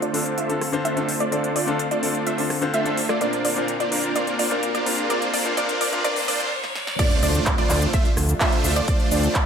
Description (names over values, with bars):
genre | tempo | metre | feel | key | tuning
EDM, festival progressive house | 127 BPM | 4/4 | straight | D minor | A4 = 442 Hz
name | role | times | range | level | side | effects
lush unison pad | sustained chords | 0.0-9.5 s | C3 to Bb4 | -31 LUFS | right 1 dB | chorus, sidechain pumping
wide unison pluck | arpeggios | 0.0-9.3 s | D5 to E5 | -28 LUFS | right 1 dB | sidechain pumping, ping-pong delay
supersaw chords | riff | 0.0-9.3 s | A3 to E5 | -25 LUFS | right 2 dB | sidechain pumping, low-pass filter, ping-pong delay
big-room dance drum kit | drums | 0.0-9.4 s | crash cymbal, handclaps, hi-hat, rim click, shaker, snare drum | -27 LUFS | equal | overdrive, small room ambience
riser and impact | sound effects | 0.0-8.9 s | none | -33 LUFS | right 1 dB | none
bright concert grand piano | accompaniment | 0.1-6.5 s | Bb2 to C5 | -26 LUFS | left 3 dB | sidechain pumping, ping-pong delay
electronic kick drum | drums | 7.0-9.4 s | none | -22 LUFS | equal | small room ambience
fat analog bass | bass | 7.2-9.3 s | D2 | -21 LUFS | equal | sidechain pumping
room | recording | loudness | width
moderate digital room reverb, RT60 1.1 s, digital ambience | high-pass filter | -20 LUFS | side -7 dB against mid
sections
0.0-7.0 A section; 7.0-9.5 B section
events
build-up 0.0-7.0; filter sweep on supersaw synth 0.0-7.0; filter sweep on synth pluck 0.0-7.0; filter sweep 0.0-7.0; stop 6.5-7.0; drum fill 6.6-7.0; drop 7.0-9.5; impact 7.0-8.9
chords
0.0 Dm7; 3.2 Bbadd9; 7.0 Dm7